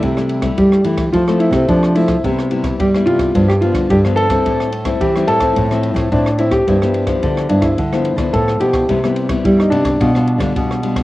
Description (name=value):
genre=samba and choro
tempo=108 BPM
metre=4/4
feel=straight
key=C major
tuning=A4 = 439 Hz
part: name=warm baby grand piano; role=melody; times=0.0-10.5 s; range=D4 to A4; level=-18 LUFS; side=equal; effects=none
part: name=nylon-string guitar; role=accompaniment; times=0.0-11.0 s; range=G2 to F4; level=-20 LUFS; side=left 4 dB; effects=cassette tape
part: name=nylon-string guitar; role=bass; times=0.0-11.0 s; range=G2 to G3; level=-16 LUFS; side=right 1 dB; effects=none
part: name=open jazz drum kit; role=drums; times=0.0-11.0 s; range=kick drum, ride cymbal, rim click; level=-24 LUFS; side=right 1 dB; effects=cassette tape
room=light reverb, studio ambience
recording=home recording on cassette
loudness=-13 LUFS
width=side -17 dB against mid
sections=0.0-11.0 A section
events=none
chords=0.0 C6; 1.1 Fmaj7; 2.2 Cmaj7; 3.4 G7; 4.5 Am7; 5.6 Fmaj13/A; 6.7 G13; 8.9 Cmaj7; 10.0 G7/B